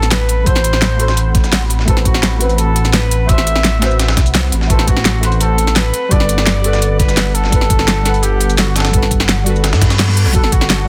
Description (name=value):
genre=liquid drum and bass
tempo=170 BPM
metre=4/4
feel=straight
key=A dorian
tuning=A4 = 440 Hz
part: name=warm flugelhorn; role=melody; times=0.0-10.9 s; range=F#4 to E5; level=-23 LUFS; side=equal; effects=tape echo
part: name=deep mellow chord stab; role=accompaniment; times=0.0-10.9 s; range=G3 to F#5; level=-25 LUFS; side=equal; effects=chorus, phaser, cassette tape, tape echo
part: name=ethereal airy pad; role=sustained chords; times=0.0-10.9 s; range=B3 to B5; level=-30 LUFS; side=equal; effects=ensemble chorus, built-in reverb, phaser, vintage 12-bit sampler grit, sidechain pumping
part: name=dark detuned saw bass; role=bass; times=0.0-10.9 s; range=G1 to G2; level=-18 LUFS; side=equal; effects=none
part: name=dusty soul sampler-style drum kit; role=drums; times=0.0-10.8 s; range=hi-hat, snare drum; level=-25 LUFS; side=equal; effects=high-pass filter on hats, high-pass filter on snare
part: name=pop drum kit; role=drums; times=0.0-10.8 s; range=hi-hat, shaker, snare drum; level=-20 LUFS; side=equal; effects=none
part: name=electronic kick drum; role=drums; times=0.5-10.6 s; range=none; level=-16 LUFS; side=equal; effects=none
part: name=reverse cymbal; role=sound effects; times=9.8-10.3 s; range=none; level=-25 LUFS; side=equal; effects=none
room=light reverb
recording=dense, heavily limited modern master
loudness=-13 LUFS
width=mono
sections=0.0-10.9 A section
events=reverse cymbal 9.8-10.3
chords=0.0 Am69; 5.9 Gmaj9